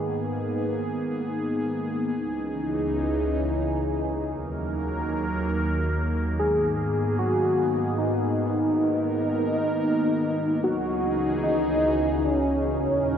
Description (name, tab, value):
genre	synthwave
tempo	113 BPM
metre	4/4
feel	straight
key	G# minor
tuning	A4 = 440 Hz
part	phased analog pad	sustained chords	0.0-13.2 s	C#2 to A#4	-25 LUFS	equal	phaser, chorus
part	wide unison lead	melody	6.4-13.2 s	C#4 to G#4	-24 LUFS	equal	vintage 12-bit sampler grit, analog delay
room	wet huge ambient reverb, RT60 8.6 s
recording	dreamy mix soaked in reverb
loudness	-23 LUFS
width	side -8 dB against mid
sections	0.0-13.2 A section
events	none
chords	0.0 G#madd9; 2.1 C#madd9; 4.3 D#m; 6.4 G#madd9; 10.6 C#madd9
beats	| 0.02 0.55 1.08 1.61 | 2.14 2.67 3.21 3.74 | 4.27 4.80 5.33 5.86 | 6.39 6.92 7.45 7.99 | 8.52 9.05 9.58 10.11 | 10.64 11.17 11.70 12.23 | 12.76